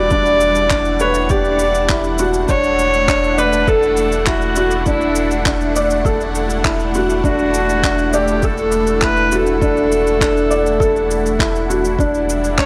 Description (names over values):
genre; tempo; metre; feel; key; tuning
piano and strings electronica; 101 BPM; 4/4; straight; unclear; A4 = 440 Hz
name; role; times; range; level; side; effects
warm viola; melody; 0.0-12.7 s; E4 to D5; -20 LUFS; equal; none
lush unison pad; sustained chords; 0.0-12.7 s; G3 to F#5; -25 LUFS; equal; chorus, phaser, sidechain pumping
felt-muted upright piano; riff; 0.0-12.7 s; D4 to D5; -21 LUFS; equal; delay
warm sub bass; bass; 0.0-12.7 s; E1; -26 LUFS; equal; sidechain pumping
electronic kick drum; drums; 0.1-12.7 s; none; -23 LUFS; equal; overdrive
electronic shaker and handclaps; drums; 0.1-12.7 s; none; -25 LUFS; equal; overdrive
room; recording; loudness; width
light reverb; none; -16 LUFS; mono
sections
0.0-12.7 A section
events
none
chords
0.0 Em9; 2.5 Dadd9/E; 12.0 Em9